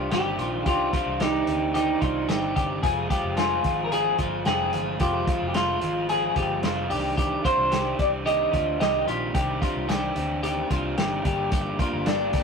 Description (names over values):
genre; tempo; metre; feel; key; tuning
jangly indie pop; 110 BPM; 4/4; straight; C minor; A4 = 442 Hz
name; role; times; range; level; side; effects
clean electric guitar; melody; 0.0-12.4 s; D4 to Eb5; -26 LUFS; right 1 dB; none
crunchy overdriven guitar; accompaniment; 0.0-12.4 s; F2 to G4; -30 LUFS; right 2 dB; none
twelve-string electric guitar; arpeggios; 0.0-12.4 s; F4 to Ab4; -28 LUFS; left 4 dB; none
vintage muted picked electric bass; bass; 0.0-12.4 s; F1 to D2; -33 LUFS; left 1 dB; none
vintage drum kit; drums; 0.1-12.4 s; hi-hat, kick drum, snare drum; -28 LUFS; equal; none
room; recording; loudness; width
moderate studio reverb, RT60 0.6 s; rough rehearsal-room recording, tube saturation; -22 LUFS; side -5 dB against mid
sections
0.0-12.4 A section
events
none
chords
0.0 Cmadd9; 2.8 Fm; 6.9 Cmadd9; 11.3 Gm